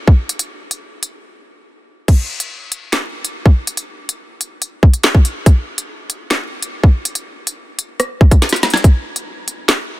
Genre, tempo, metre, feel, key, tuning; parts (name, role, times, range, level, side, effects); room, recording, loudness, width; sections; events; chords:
hip hop; 142 BPM; 4/4; half-time
drill drum kit; drums; 0.1-9.8 s; crash cymbal, handclaps, hi-hat, kick drum, rim click, snare drum; -12 LUFS; equal
little or no reverb; dense, heavily limited modern master; -13 LUFS; side -18 dB against mid
0.0-2.1 A section; 2.1-10.0 B section
break 1.2-2.1; drum fill 8.4-8.8